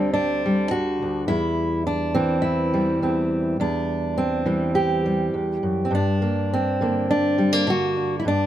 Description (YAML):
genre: folk, solo fingerstyle acoustic guitar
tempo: 104 BPM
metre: 4/4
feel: straight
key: unclear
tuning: A4 = 439 Hz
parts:
  - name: fingerpicked steel-string acoustic guitar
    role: solo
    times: 0.0-8.5 s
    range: D2 to G4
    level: -20 LUFS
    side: equal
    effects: none
room: moderate studio ambience, RT60 0.5 s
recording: none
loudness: -20 LUFS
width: side -12 dB against mid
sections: 0.0-8.5 A section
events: none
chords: 0.0 Dsus4; 1.3 C/E; 5.9 Gm